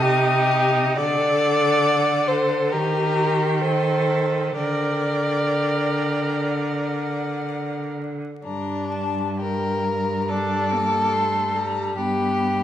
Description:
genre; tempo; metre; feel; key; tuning
classical, slow romantic movement for string quartet; 58-73 BPM; 4/4; rubato; G minor; A4 = 440 Hz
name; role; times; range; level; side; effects
warm violin; melody; 0.0-12.6 s; F#5 to Eb6; -31 LUFS; left 7 dB; none
rich violin; second line; 0.0-12.6 s; D4 to D5; -23 LUFS; left 2 dB; none
clear viola; accompaniment; 0.0-12.6 s; G3 to Bb4; -27 LUFS; right 2 dB; none
clear cello; bass; 0.0-12.6 s; G2 to Eb3; -25 LUFS; right 1 dB; none
room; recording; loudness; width
wet recital hall reverb, RT60 1.7 s; minimal, uncompressed stereo recording, vinyl crackle; -20 LUFS; side -11 dB against mid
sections
0.0-8.4 A section; 8.4-12.6 B section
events
none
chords
0.0 Adim/C (rootless); 1.0 D; 2.7 Eb; 4.6 Gm/D; 8.4 Gm; 12.0 G

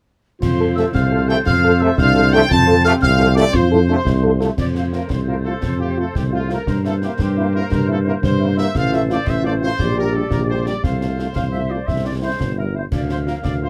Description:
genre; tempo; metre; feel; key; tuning
military-style march for wind band; 115 BPM (dotted quarters); 6/8; straight; F major; A4 = 440 Hz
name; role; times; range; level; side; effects
warm trumpet section; melody; 0.4-13.7 s; F4 to A5; -27 LUFS; equal; none
dark euphonium; second line; 0.4-4.2 s; C4 to F4; -26 LUFS; equal; none
mellow piccolo; second line; 0.4-4.5 s; C6 to A6; -24 LUFS; equal; none
warm woodwind section; second line; 0.4-13.7 s; G4 to F5; -31 LUFS; equal; none
warm tuba; bass; 0.4-13.7 s; G1 to G2; -21 LUFS; equal; none
concert snare drum, clash cymbals and concert bass drum; drums; 0.4-13.6 s; none; -26 LUFS; equal; none
mellow French horn section; accompaniment; 0.6-13.7 s; F3 to A4; -24 LUFS; equal; none
clear trombone section; sustained chords; 0.8-4.5 s; C3 to A3; -23 LUFS; equal; none
room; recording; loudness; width
moderate booth ambience, RT60 0.2 s; none; -18 LUFS; mono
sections
0.4-4.6 A section; 4.6-13.7 B section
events
none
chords
0.4 F; 6.7 C7/G; 8.8 F/A; 9.8 Gm/Bb; 10.8 F/C; 11.9 C; 12.9 Bb/D

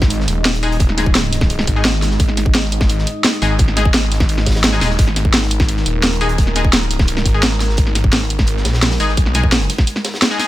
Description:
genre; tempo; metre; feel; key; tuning
dark technical drum and bass; 172 BPM; 4/4; straight; unclear; A4 = 440 Hz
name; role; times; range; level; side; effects
dark analog pad; sustained chords; 0.0-10.5 s; G#3 to D#5; -26 LUFS; equal; chorus, sidechain pumping
snarling distorted saw bass; bass; 0.0-9.7 s; D#1 to B1; -18 LUFS; equal; distortion, tube saturation
crunchy breakbeat drum kit; drums; 0.0-10.5 s; hi-hat, snare drum; -28 LUFS; equal; high-pass filter on hats, small room ambience, high-pass filter on snare, high-pass filter on room
drum and bass drum kit; drums; 0.0-10.5 s; hi-hat, snare drum; -18 LUFS; equal; small room ambience
electronic kick drum; drums; 0.0-9.9 s; none; -15 LUFS; equal; small room ambience
band-passed chord stab; stabs; 0.6-10.5 s; G#3 to G#4; -23 LUFS; left 3 dB; chorus, dub echo
room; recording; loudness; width
little or no reverb; none; -13 LUFS; side -15 dB against mid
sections
0.0-10.5 A section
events
break 9.9-10.5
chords
0.0 G#5

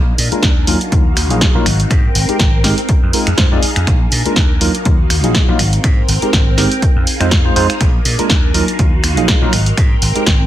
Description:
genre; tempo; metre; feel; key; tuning
filtered disco house; 122 BPM; 4/4; swing 55% on 16ths; Bb mixolydian; A4 = 442 Hz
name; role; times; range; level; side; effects
phased string machine; sustained chords; 0.0-10.5 s; C4 to Ab5; -22 LUFS; equal; ensemble chorus, phaser, sidechain pumping, low-pass filter
vintage slap bass; bass; 0.0-10.5 s; Ab1 to Bb2; -17 LUFS; equal; sidechain pumping, low-pass filter
punchy analog drum machine; drums; 0.2-10.4 s; finger snaps, hi-hat, snare drum; -17 LUFS; equal; studio reverb, sidechain pumping on hats
tine electric piano; accompaniment; 0.3-10.2 s; Gb3 to D5; -18 LUFS; equal; medium stereo tremolo, phaser, vintage 12-bit sampler grit, sidechain pumping, low-pass filter
electronic kick drum; drums; 0.4-10.4 s; none; -14 LUFS; equal; studio reverb
room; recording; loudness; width
light reverb; none; -11 LUFS; side -13 dB against mid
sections
0.0-10.5 A section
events
filter sweep 0.0-10.5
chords
0.0 Bb7; 0.7 Ebmadd9; 1.7 Abmaj9; 2.9 Fm7; 3.9 Bb7; 4.6 Ebmadd9; 5.6 Abmaj9; 6.8 Fm7; 7.8 Bb7; 8.5 Ebmadd9; 9.5 Abmaj9

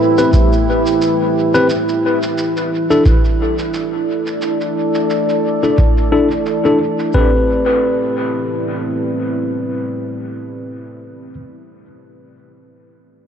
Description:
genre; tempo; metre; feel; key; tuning
ambient dub; 88 BPM; 4/4; swing 56% on 16ths; A minor; A4 = 440 Hz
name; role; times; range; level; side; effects
deep dark ambient pad; sustained chords; 0.0-10.6 s; A3 to D5; -17 LUFS; right 1 dB; chorus, built-in reverb
tine electric piano; stabs; 0.2-11.3 s; C4 to B4; -18 LUFS; left 2 dB; overdrive, low-pass filter, dub echo
shaker; drums; 0.2-7.1 s; none; -32 LUFS; right 2 dB; low-pass filter on perc, low-pass filter on room, dub echo
electronic kick drum; drums; 0.3-7.3 s; none; -14 LUFS; equal; none
room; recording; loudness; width
moderate huge ambient reverb, RT60 7.1 s; none; -13 LUFS; side -8 dB against mid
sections
0.0-7.1 A section; 7.1-9.9 B section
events
none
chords
0.0 Am9; 1.7 E7sus4; 7.1 Am9

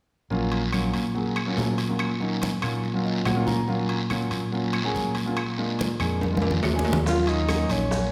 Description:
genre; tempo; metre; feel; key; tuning
Afro-Cuban jazz; 142 BPM; 4/4; straight; Eb minor; A4 = 443 Hz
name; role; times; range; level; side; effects
dark concert grand piano; accompaniment; 0.3-8.1 s; Gb3 to Bb5; -29 LUFS; equal; none
fingered electric bass; bass; 0.3-8.1 s; Bb1 to Bb2; -30 LUFS; equal; none
congas; percussion; 0.3-8.1 s; none; -35 LUFS; equal; none
guiro; percussion; 0.3-8.1 s; none; -38 LUFS; equal; none
timbales; percussion; 0.5-7.9 s; none; -35 LUFS; equal; none
claves; percussion; 0.7-7.7 s; none; -42 LUFS; equal; none
breathy tenor saxophone; melody; 7.1-8.1 s; Db4 to F4; -28 LUFS; equal; none
bongos; percussion; 7.1-8.1 s; none; -37 LUFS; equal; none
maracas; percussion; 7.1-8.1 s; none; -42 LUFS; equal; none
room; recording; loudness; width
wet recital hall reverb, RT60 1.7 s; recorded in a church or concert hall; -25 LUFS; mono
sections
0.3-7.1 A section; 7.1-8.1 B section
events
grand piano fill 2.8-3.7; drum fill 6.2-7.1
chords
0.3 Ebm7/Bb (rootless); 5.4 Bb7; 7.1 Ebm7

